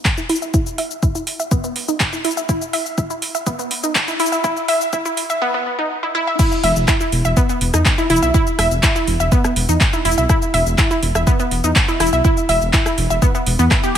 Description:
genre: melodic techno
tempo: 123 BPM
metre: 4/4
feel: straight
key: unclear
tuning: A4 = 440 Hz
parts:
  - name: wide unison pluck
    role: arpeggios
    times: 0.0-14.0 s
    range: B3 to E5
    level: -19 LUFS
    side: equal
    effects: vintage 12-bit sampler grit, sidechain pumping, tape echo
  - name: electronic kick drum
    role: drums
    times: 0.1-13.8 s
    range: none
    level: -17 LUFS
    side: equal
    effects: none
  - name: house drum kit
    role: drums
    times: 0.1-14.0 s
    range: crash cymbal, handclaps, hi-hat, rim click, shaker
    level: -21 LUFS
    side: equal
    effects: none
  - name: dark detuned saw bass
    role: bass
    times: 6.6-14.0 s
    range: E1 to E2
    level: -18 LUFS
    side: equal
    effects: sidechain pumping
room: light reverb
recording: high-pass filter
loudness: -15 LUFS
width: side -9 dB against mid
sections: 0.0-6.4 A section; 6.4-14.0 B section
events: build-up 0.0-6.4; filter sweep on synth pluck 0.0-6.4; drop 6.4-14.0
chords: 0.0 E5

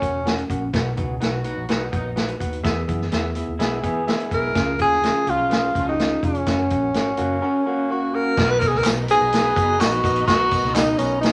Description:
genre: uptempo 1960s-style soul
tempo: 126 BPM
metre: 4/4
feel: straight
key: B major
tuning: A4 = 440 Hz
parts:
  - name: breathy tenor saxophone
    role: melody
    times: 0.0-0.5, 4.3-11.3 s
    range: C#4 to B4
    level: -22 LUFS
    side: equal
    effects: none
  - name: bell-like tine electric piano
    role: accompaniment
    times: 0.0-11.3 s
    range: B2 to F#5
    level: -29 LUFS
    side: equal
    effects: none
  - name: vintage muted fingered electric bass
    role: bass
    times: 0.0-11.3 s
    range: E1 to E3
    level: -32 LUFS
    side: equal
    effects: none
  - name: vintage drum kit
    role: drums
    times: 0.0-11.3 s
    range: crash cymbal, hi-hat, kick drum, snare drum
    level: -26 LUFS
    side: equal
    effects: none
  - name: warm horn section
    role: second line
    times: 1.0-11.3 s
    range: D#3 to B4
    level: -36 LUFS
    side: equal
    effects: none
  - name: electric guitar through a small old amp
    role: riff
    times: 3.6-8.3 s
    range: G#3 to A#4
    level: -30 LUFS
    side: equal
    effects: none
  - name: warm studio string section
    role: second line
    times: 8.4-11.3 s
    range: B3 to A#5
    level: -36 LUFS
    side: equal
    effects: none
  - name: tambourine and handclaps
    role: percussion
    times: 8.6-11.3 s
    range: none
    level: -34 LUFS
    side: equal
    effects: none
room: wet studio reverb, RT60 0.6 s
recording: none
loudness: -21 LUFS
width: mono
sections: 0.0-8.4 A section; 8.4-11.3 B section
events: none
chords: 0.0 F#; 0.7 B; 2.6 E; 4.6 C#; 6.5 F#; 8.4 Bmaj7

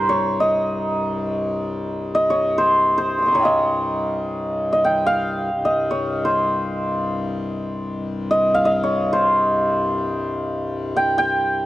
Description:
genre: indian classical, Hindustani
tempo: free time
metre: none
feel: none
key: C raga bhairavi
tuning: A4 = 440 Hz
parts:
  - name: santur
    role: melody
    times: 0.0-11.7 s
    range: Bb4 to F6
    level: -19 LUFS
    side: equal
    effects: none
  - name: hand-pumped harmonium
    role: drone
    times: 0.0-11.7 s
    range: C2 to G2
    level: -26 LUFS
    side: left 2 dB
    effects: none
room: little or no reverb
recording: dry, close 1970s-style studio recording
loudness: -18 LUFS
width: side -15 dB against mid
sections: 0.0-11.7 A section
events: none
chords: none

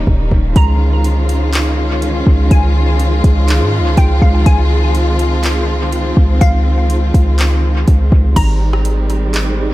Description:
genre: hip hop, atmospheric cloud-rap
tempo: 123 BPM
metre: 4/4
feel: half-time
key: Db lydian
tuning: A4 = 440 Hz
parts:
  - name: glassy wavetable pluck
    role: melody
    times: 0.0-9.7 s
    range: Eb5 to Bb5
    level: -24 LUFS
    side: left 2 dB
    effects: chorus, low-pass filter, tape echo
  - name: warm symphonic string section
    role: sustained chords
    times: 0.0-9.7 s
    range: Eb3 to F4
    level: -18 LUFS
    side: equal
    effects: sidechain pumping
  - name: warm 808-style bass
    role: bass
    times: 0.0-9.7 s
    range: Eb1 to Ab2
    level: -13 LUFS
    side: equal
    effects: none
  - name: smooth R&B drum kit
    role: drums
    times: 0.1-9.5 s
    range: crash cymbal, handclaps, hi-hat, kick drum, rim click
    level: -16 LUFS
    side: equal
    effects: none
room: digital ambience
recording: echo-heavy mix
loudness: -10 LUFS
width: side -17 dB against mid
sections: 0.0-8.4 A section; 8.4-9.7 B section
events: break 0.0-0.6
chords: 0.0 Eb7; 0.6 Dbadd9; 8.4 Abmaj7

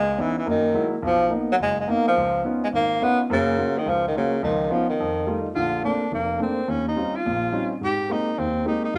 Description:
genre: jazz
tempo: 212 BPM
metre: 4/4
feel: swing 62% on 8ths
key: Bb major from 5.6 s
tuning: A4 = 439 Hz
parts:
  - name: breathy tenor saxophone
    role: melody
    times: 0.0-9.0 s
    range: Db3 to G4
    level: -25 LUFS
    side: equal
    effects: none
  - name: warm baby grand piano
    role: accompaniment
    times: 0.0-9.0 s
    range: F1 to G4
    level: -27 LUFS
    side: equal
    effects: none
room: wet large studio reverb, RT60 1.2 s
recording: band playing live in one room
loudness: -23 LUFS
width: mono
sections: 0.0-5.6 A section; 5.6-9.0 B section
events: none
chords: 0.5 Gb9; 1.0 Bmaj7; 2.2 Db9; 3.3 Gbmaj7; 4.4 Db9; 5.0 F9; 5.6 Bbmaj9; 6.7 Eb13; 7.8 Abmaj9

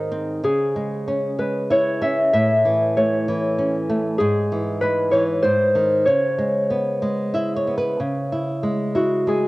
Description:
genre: children's music, lullaby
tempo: 95 BPM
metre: 3/4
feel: rubato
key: C# minor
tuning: A4 = 440 Hz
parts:
  - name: Celtic harp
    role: melody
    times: 0.0-9.5 s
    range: F#4 to E5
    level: -20 LUFS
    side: equal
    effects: none
  - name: flamenco guitar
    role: accompaniment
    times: 0.0-9.5 s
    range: G#2 to E5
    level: -22 LUFS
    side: right 1 dB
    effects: cassette tape
room: light reverb, small room ambience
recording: home recording on cassette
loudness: -18 LUFS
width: side -20 dB against mid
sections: 0.0-8.0 A section; 8.0-9.5 B section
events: nylon-string guitar fill 7.0-8.0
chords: 0.4 C#m; 2.3 A; 4.2 E6/G#; 5.4 G#; 6.1 C#m7; 8.0 C#m

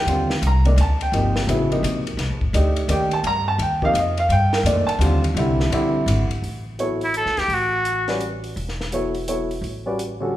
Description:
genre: modal jazz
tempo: 169 BPM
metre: 3/4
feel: swing 64% on 8ths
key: C dorian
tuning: A4 = 438 Hz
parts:
  - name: warm baby grand piano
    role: accompaniment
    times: 0.0-10.3 s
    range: Bb2 to Bb5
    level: -21 LUFS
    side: equal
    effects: none
  - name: upright bass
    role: bass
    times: 0.1-10.4 s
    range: E1 to G2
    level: -22 LUFS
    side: equal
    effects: none
  - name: compact cocktail drum kit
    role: drums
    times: 0.1-10.1 s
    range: hi-hat, kick drum, ride cymbal, snare drum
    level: -30 LUFS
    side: left 2 dB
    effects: none
  - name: clear trumpet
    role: melody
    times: 7.0-8.2 s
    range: E4 to A4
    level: -21 LUFS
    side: equal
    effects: none
room: wet recital hall reverb, RT60 1.5 s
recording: recorded in a church or concert hall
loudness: -18 LUFS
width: side -13 dB against mid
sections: 0.0-6.4 A section; 6.4-10.4 B section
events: none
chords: 0.0 Cm11; 5.4 E7alt; 6.4 Asus2

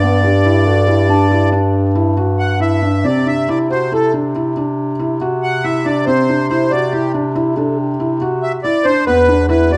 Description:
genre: contemporary instrumental, chamber music in an uneven meter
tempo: 139 BPM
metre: 7/4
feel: straight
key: unclear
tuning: A4 = 440 Hz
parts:
  - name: accordion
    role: melody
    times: 0.0-9.8 s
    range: G4 to F#5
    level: -19 LUFS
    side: equal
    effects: light tremolo tuning
  - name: felt-muted upright piano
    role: arpeggios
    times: 0.0-9.8 s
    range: B3 to F#4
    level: -20 LUFS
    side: equal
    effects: none
  - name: warm bass clarinet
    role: bass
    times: 0.0-9.8 s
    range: E2 to C3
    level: -20 LUFS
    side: equal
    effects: none
  - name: mellow French horn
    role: second line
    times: 0.2-2.1, 7.1-8.3 s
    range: D4 to A4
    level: -24 LUFS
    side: equal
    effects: none
  - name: glockenspiel with rubber mallets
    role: texture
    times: 1.1-2.5 s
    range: A5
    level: -27 LUFS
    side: equal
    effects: none
room: moderate recital hall reverb, RT60 1.4 s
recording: dark, warm production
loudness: -15 LUFS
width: mono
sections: 0.0-9.8 A section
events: none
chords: 0.0 G5; 3.0 Cadd9; 9.1 E5

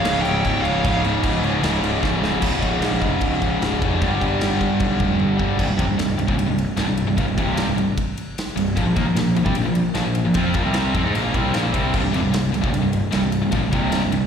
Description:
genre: heavy metal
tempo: 151 BPM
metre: 4/4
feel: straight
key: C minor from 5.6 s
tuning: A4 = 440 Hz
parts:
  - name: high-gain lead guitar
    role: melody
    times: 0.0-1.0 s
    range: F5 to G5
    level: -24 LUFS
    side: right 1 dB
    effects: distortion, digital delay
  - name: high-gain lead guitar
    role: second line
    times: 0.0-1.0 s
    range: Db5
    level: -30 LUFS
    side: right 4 dB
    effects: distortion
  - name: distorted electric guitar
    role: riff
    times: 0.0-14.2 s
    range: C2 to F4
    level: -23 LUFS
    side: right 10 dB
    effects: distortion, slapback echo
  - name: tight distorted guitar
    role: riff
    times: 0.0-14.2 s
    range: C2 to F4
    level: -24 LUFS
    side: left 11 dB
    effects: distortion, slapback echo
  - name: big rock drum kit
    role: drums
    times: 0.0-14.2 s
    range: crash cymbal, kick drum, ride cymbal, snare drum, toms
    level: -26 LUFS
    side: equal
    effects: none
  - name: fuzz picked electric bass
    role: bass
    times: 0.1-14.2 s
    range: C1 to Ab2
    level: -23 LUFS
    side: left 1 dB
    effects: overdrive
room: small room ambience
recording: live gig heard through the venue's PA, recital hall reverb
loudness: -18 LUFS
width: side -7 dB against mid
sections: 0.0-2.4 A section; 2.4-5.6 B section; 5.6-14.3 C section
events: half time 0.0-2.4; drum fill 2.0-2.4, 5.2-5.6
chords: 0.0 Db; 4.0 G5; 5.6 C5; 8.8 Bb5; 11.9 C5

